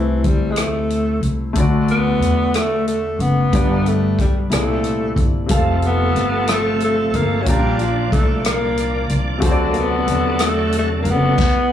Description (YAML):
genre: slow gospel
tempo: 61 BPM (dotted quarters)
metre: 6/8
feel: straight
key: unclear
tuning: A4 = 438 Hz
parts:
  - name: growling alto saxophone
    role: melody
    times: 0.0-11.7 s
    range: E3 to B3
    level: -20 LUFS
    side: left 1 dB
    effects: plate reverb, slapback echo
  - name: clear grand piano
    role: accompaniment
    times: 0.0-11.4 s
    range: G2 to Bb5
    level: -22 LUFS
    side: left 2 dB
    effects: plate reverb, slapback echo
  - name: upright bass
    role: bass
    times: 0.0-11.4 s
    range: F1 to E2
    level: -21 LUFS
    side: equal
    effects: none
  - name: swinging big-band drum kit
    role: drums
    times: 0.2-11.5 s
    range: crash cymbal, hi-hat, kick drum, rim click, snare drum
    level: -20 LUFS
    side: equal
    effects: none
  - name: bright tonewheel organ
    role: sustained chords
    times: 5.5-11.4 s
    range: C3 to D5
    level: -24 LUFS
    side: right 2 dB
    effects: fast rotary speaker, overdrive, chorus vibrato, plate reverb
room: light reverb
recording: live gig heard through the venue's PA, club reverb, small room ambience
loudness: -15 LUFS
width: side -10 dB against mid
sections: 0.0-11.7 A section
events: drum fill 11.4-11.7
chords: 0.0 Am/C; 1.6 D; 3.5 G; 4.5 C13; 5.5 F; 7.5 Bb; 9.4 D7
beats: 0.58 | 1.57 2.55 | 3.53 4.51 | 5.50 6.48 | 7.46 8.44 | 9.42 10.40 | 11.38